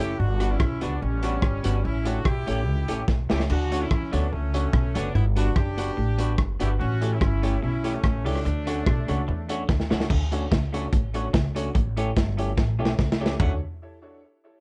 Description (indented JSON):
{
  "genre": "ska",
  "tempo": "145 BPM",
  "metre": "4/4",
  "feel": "swing 53% on 8ths",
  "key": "D major",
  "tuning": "A4 = 441 Hz",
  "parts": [
    { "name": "warm horn section", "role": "melody", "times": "0.0-9.7 s", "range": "G3 to G4", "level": "-33 LUFS", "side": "equal", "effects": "none" },
    { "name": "semi-hollow electric guitar", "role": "accompaniment", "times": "0.0-13.5 s", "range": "A3 to G4", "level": "-35 LUFS", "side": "equal", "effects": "lush chorus" },
    { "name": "warm upright piano", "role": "stabs", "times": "0.0-13.6 s", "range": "D4 to D5", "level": "-37 LUFS", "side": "equal", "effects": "tape echo" },
    { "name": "upright bass", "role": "bass", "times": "0.0-13.6 s", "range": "F#1 to E2", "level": "-28 LUFS", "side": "equal", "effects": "none" },
    { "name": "crunchy breakbeat drum kit", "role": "drums", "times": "0.4-13.5 s", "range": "crash cymbal, hi-hat, kick drum, ride cymbal, rim click, snare drum, toms", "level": "-27 LUFS", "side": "equal", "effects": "vintage 12-bit sampler grit" },
    { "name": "semi-hollow electric guitar", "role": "riff", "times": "3.5-13.1 s", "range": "F#2 to E3", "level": "-37 LUFS", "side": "equal", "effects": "none" }
  ],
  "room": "light reverb",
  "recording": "none",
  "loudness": "-25 LUFS",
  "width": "mono",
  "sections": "0.0-10.1 A section; 10.1-13.4 B section; 13.4-14.6 C section",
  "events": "drum fill 3.1-3.5, 9.7-10.1, 12.6-13.4",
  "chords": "0.2 Gmaj7; 1.8 A7; 3.5 Dmaj7; 5.1 Gmaj7; 6.8 A7; 8.4 Dmaj7; 11.8 A7; 13.4 Dmaj7"
}